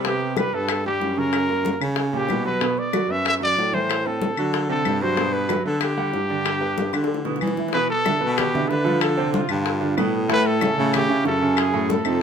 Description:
Afro-Cuban jazz; 187 BPM; 4/4; straight; G major, E dorian from 7.7 s; A4 = 440 Hz
clear baby grand piano; accompaniment; 0.0-12.2 s; A2 to F#5; -25 LUFS; right 4 dB
breathy baritone saxophone; bass; 0.0-12.2 s; F2 to E3; -25 LUFS; left 1 dB
bongos; percussion; 0.0-12.1 s; -29 LUFS; left 8 dB
congas; percussion; 0.0-12.2 s; -31 LUFS; left 2 dB
breathy trumpet; melody; 0.1-12.2 s; F4 to E5; -24 LUFS; equal
claves; percussion; 0.4-12.2 s; -31 LUFS; left 8 dB
moderate studio reverb, RT60 0.6 s; minimal, uncompressed stereo recording; -19 LUFS; side -7 dB against mid
0.0-7.7 A section; 7.7-12.2 B section
drum fill 6.9-7.7
0.0 C5; 1.3 F#; 2.6 Bm7; 3.9 Am; 4.5 D7; 5.2 Gmaj7; 7.7 Em7; 9.0 Dm7; 9.7 G9; 10.3 A6; 11.6 F#m9

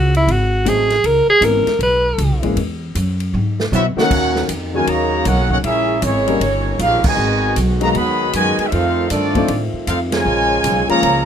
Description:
jazz, big band swing; 156 BPM; 4/4; swing 65% on 8ths; G# minor, Eb minor from 4.1 s; A4 = 438 Hz
warm tenor saxophone; melody; 0.0-2.4 s; E4 to B4; -14 LUFS; right 1 dB
upright bass; bass; 0.0-11.3 s; G1 to B2; -20 LUFS; equal
swinging big-band drum kit; drums; 0.1-11.1 s; crash cymbal, hi-hat, kick drum, ride cymbal, snare drum, toms; -25 LUFS; equal
warm baby grand piano; accompaniment; 0.6-11.0 s; D#3 to Bb4; -20 LUFS; left 4 dB
warm trumpet section; melody; 3.7-11.3 s; Bb3 to Cb6; -18 LUFS; equal
warm trombone section; second line; 3.7-11.2 s; Cb3 to Gb4; -22 LUFS; right 3 dB
mellow trombone section; sustained chords; 4.1-11.3 s; Db3 to Gb4; -26 LUFS; left 1 dB
light reverb; minimal, uncompressed stereo recording; -14 LUFS; side -8 dB against mid
0.0-4.1 A section; 4.1-11.3 B section
tenor saxophone solo 0.0-4.1; drum fill 3.3-4.1; band accent 7.0, 10.1
0.3 G#7b9; 1.0 C#m7; 2.6 Esus2; 3.3 G#7alt; 4.1 Ebm7; 5.6 Bbm7b5; 6.4 Eb7; 7.2 Abm7; 8.7 F7; 10.3 Bbm7

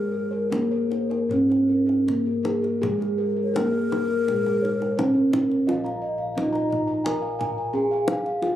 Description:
Javanese gamelan; 75-87 BPM; 4/4; straight; Bb slendro; A4 = 440 Hz
gamelan-type bronze metallophone; melody; 0.0-8.6 s; Ab3-25c to Bb4; -23 LUFS; right 1 dB
breathy hollow bass bansuri; second line; 0.0-5.5 s; Bb4 to Db5-44c; -28 LUFS; left 5 dB
gamelan-type bossed gongs; arpeggios; 0.0-8.6 s; Ab4-25c to Bb5; -33 LUFS; left 2 dB
gamelan-type bronze metallophone; arpeggios; 0.0-8.6 s; Ab4-25c to Bb5; -30 LUFS; equal
gamelan-type bossed gongs; bass; 0.0-8.6 s; Bb1 to Ab4-25c; -32 LUFS; equal
kendang; percussion; 0.5-8.6 s; -30 LUFS; left 1 dB
moderate spring reverb, RT60 1.4 s; recorded on a phone in the room, club reverb; -21 LUFS; side -12 dB against mid
0.0-5.7 A section; 5.7-8.6 B section

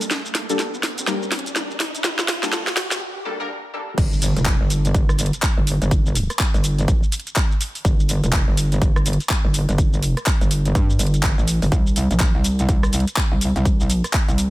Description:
bass house; 124 BPM; 4/4; swing 60% on 16ths; G minor; A4 = 440 Hz
garage drum kit; drums; 0.0-14.5 s; crash cymbal, handclaps, hi-hat, rim click, shaker, snare drum; -24 LUFS; equal; overdrive, studio reverb
riser and impact; sound effects; 0.0-5.9 s; -31 LUFS; equal
orchestra-hit-like synth stab; stabs; 0.5-3.9 s; G3 to Bb4; -28 LUFS; left 2 dB; built-in reverb, vintage 12-bit sampler grit, sidechain pumping, dub echo
metallic wobble bass; bass; 4.0-14.5 s; F1 to G2; -20 LUFS; equal; distortion, chorus, overdrive, sidechain pumping
electronic kick drum; drums; 4.0-14.3 s; -19 LUFS; equal; studio reverb
little or no reverb; high-pass filter; -17 LUFS; side -17 dB against mid
0.0-4.0 A section; 4.0-14.5 B section
build-up 0.0-4.0; drum fill 0.0-3.0; riser 0.0-3.0; filter sweep on synth stab 0.0-4.0; break 3.0-4.0; drop 4.0-14.5; impact 4.0-5.9
0.0 Gmadd9; 4.0 N.C.

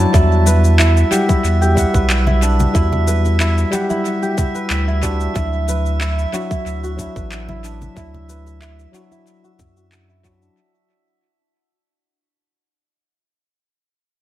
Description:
organic downtempo; 92 BPM; 4/4; swing 53% on 16ths; E minor; A4 = 439 Hz
tine electric piano; accompaniment; 0.0-10.6 s; F#3 to F#5; -22 LUFS; left 2 dB; sidechain pumping, tape echo
kora; arpeggios; 0.0-12.1 s; D4 to B4; -23 LUFS; right 2 dB; low-pass filter, tape echo
warm sub bass; bass; 0.0-10.5 s; A1 to F#2; -16 LUFS; equal; tube saturation, sidechain pumping
drifting glass-harmonics texture; texture; 0.0-10.6 s; E5 to A5; -28 LUFS; right 4 dB; chorus, built-in reverb
electronic cabasa and handclaps; drums; 0.1-10.5 s; -24 LUFS; left 1 dB; tape echo
electronic kick drum; drums; 0.1-10.4 s; -18 LUFS; equal
congas and bongos; percussion; 0.5-10.4 s; -27 LUFS; left 2 dB
light reverb, digital ambience; echo-heavy mix; -14 LUFS; side -14 dB against mid
0.1-10.6 A section
fade-out 0.1-10.6; filter sweep on kora 0.1-10.6
0.1 Emadd9; 5.4 Dadd9

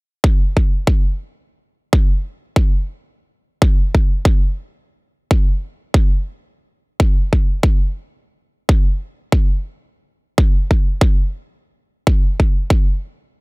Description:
future bass; 142 BPM; 4/4; swing 55% on 16ths, half-time
electronic kick drum; drums; 0.2-12.8 s; -14 LUFS; equal
little or no reverb; -15 LUFS; side -36 dB against mid
0.2-13.4 A section
break 12.9-13.4

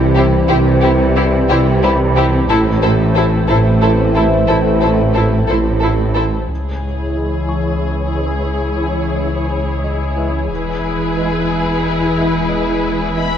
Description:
cinematic, hybrid orchestral and electronic film score; 60 BPM (dotted quarters); 6/8; straight; C# minor; A4 = 440 Hz
clear trombone section; sustained chords; 0.0-13.3 s; E3 to A3; -23 LUFS; right 2 dB; low-pass filter
dark French horn section; sustained chords; 0.0-13.3 s; B3 to E4; -22 LUFS; left 4 dB; low-pass filter
hollow soft pad; sustained chords; 0.0-13.4 s; E3 to C#5; -23 LUFS; left 2 dB; ensemble chorus, low-pass filter
mellow tuba; bass; 0.0-6.4 s; A1 to C2; -20 LUFS; right 3 dB
pure sine sub bass; bass; 0.0-13.4 s; E1 to C#2; -22 LUFS; equal
warm symphonic cello section; bass; 0.0-13.4 s; C#2 to C3; -21 LUFS; right 2 dB
warm symphonic double bass section; bass; 0.0-6.4 s; A1 to C2; -20 LUFS; right 3 dB
felt-muted upright piano; texture; 0.0-13.4 s; C5 to C#6; -28 LUFS; equal; digital delay
warm symphonic violin section; melody; 0.2-13.4 s; B4 to B5; -27 LUFS; left 6 dB; low-pass filter
warm symphonic violin section; second line; 0.2-13.4 s; G4 to A4; -23 LUFS; left 3 dB
rich symphonic viola section; accompaniment; 0.2-13.4 s; E4; -22 LUFS; right 1 dB; low-pass filter
reverse cymbal; sound effects; 12.5-13.4 s; barely audible
moderate scoring stage reverb, RT60 1.6 s; worn, warbling old tape, cassette tape, warbly pitch drift; -13 LUFS; side -9 dB against mid
0.0-6.5 A section; 6.5-13.4 B section
filter sweep 6.5-13.4
0.0 C; 2.5 Am; 6.5 C#m; 10.5 E

